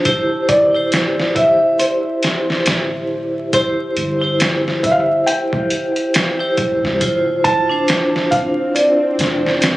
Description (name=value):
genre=trip hop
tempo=69 BPM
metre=4/4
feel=swing 59% on 16ths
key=D minor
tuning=A4 = 440 Hz
part: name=vibraphone with hard mallets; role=accompaniment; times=0.0-9.8 s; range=D4 to C5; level=-18 LUFS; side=equal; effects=tremolo, tape echo
part: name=trip hop sampler-style drum kit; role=drums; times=0.1-9.8 s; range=hi-hat, kick drum, snare drum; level=-19 LUFS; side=equal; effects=overdrive, small room ambience
part: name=felt-muted upright piano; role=melody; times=0.5-9.8 s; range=C5 to A5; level=-18 LUFS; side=equal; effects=tape echo
part: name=soft 808-style bass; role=bass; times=0.5-9.8 s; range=D1 to C2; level=-30 LUFS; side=equal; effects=tube saturation
part: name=bowed-like drone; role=texture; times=8.4-9.8 s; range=C4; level=-28 LUFS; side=equal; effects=built-in reverb
room=light reverb, digital ambience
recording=recorded on a phone in the room, studio ambience, vinyl crackle, compression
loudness=-14 LUFS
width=side -17 dB against mid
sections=0.0-9.8 A section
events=none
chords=0.1 D9sus4; 7.0 Dm9